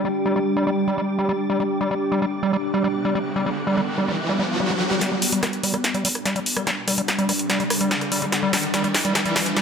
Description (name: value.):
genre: psychedelic trance.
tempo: 145 BPM.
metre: 4/4.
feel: straight.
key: G major.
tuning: A4 = 439 Hz.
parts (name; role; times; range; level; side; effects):
swarming drone; sustained chords; 0.0-9.6 s; G3 to D4; -27 LUFS; equal; built-in reverb.
overdriven acid bass; riff; 0.0-9.6 s; G3; -24 LUFS; moving between left 4 dB and right 2 dB; auto-pan, cassette tape, tape echo.
deep dark ambient pad; texture; 0.0-9.6 s; D4 to G5; -28 LUFS; equal; chorus, built-in reverb.
riser; sound effects; 2.9-9.6 s; none; -28 LUFS; right 1 dB; none.
techno drum kit; drums; 5.0-9.6 s; hi-hat, rim click, snare drum; -22 LUFS; equal; overdrive, high-pass filter on snare, studio reverb, high-pass filter on hats.
room: moderate digital room reverb, RT60 1.1 s.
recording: none.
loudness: -20 LUFS.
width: side -6 dB against mid.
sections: 0.0-5.0 A section; 5.0-9.6 B section.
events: riser 2.9-5.0, 5.0-9.6; build-up 5.0-9.6; drum fill 5.0-9.6; filter sweep on acid bass 5.0-9.6.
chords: 0.0 G5.